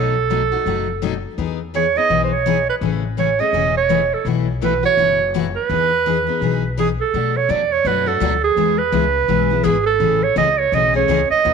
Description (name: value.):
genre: acoustic string swing (jazz manouche).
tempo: 167 BPM.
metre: 4/4.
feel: swing 60% on 8ths.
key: E major.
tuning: A4 = 441 Hz.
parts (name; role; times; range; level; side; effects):
clear clarinet; melody; 0.0-11.5 s; G#4 to D#5; -17 LUFS; right 7 dB; none.
picked steel-string acoustic guitar; accompaniment; 0.0-11.5 s; B2 to G#4; -22 LUFS; left 13 dB; none.
upright bass; bass; 0.0-11.5 s; E1 to B2; -24 LUFS; left 2 dB; none.
room: moderate echo chamber reverb, RT60 2.0 s.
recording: 1960s-style stereo with parts hard left and right.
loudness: -15 LUFS.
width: side -6 dB against mid.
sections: 0.0-7.1 A section; 7.1-11.5 B section.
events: none.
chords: 0.0 B7; 1.4 Emaj7; 2.8 Amaj7; 4.3 B7sus4; 5.7 Emaj7; 7.1 Bm7; 8.6 E; 10.0 Amaj7.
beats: 0.30 0.66 1.02 | 1.38 1.74 2.10 2.46 | 2.82 3.18 3.54 3.90 | 4.26 4.62 4.98 5.34 | 5.70 6.06 6.42 6.78 | 7.13 7.49 7.85 8.21 | 8.57 8.93 9.29 9.65 | 10.01 10.37 10.73 11.09 | 11.45.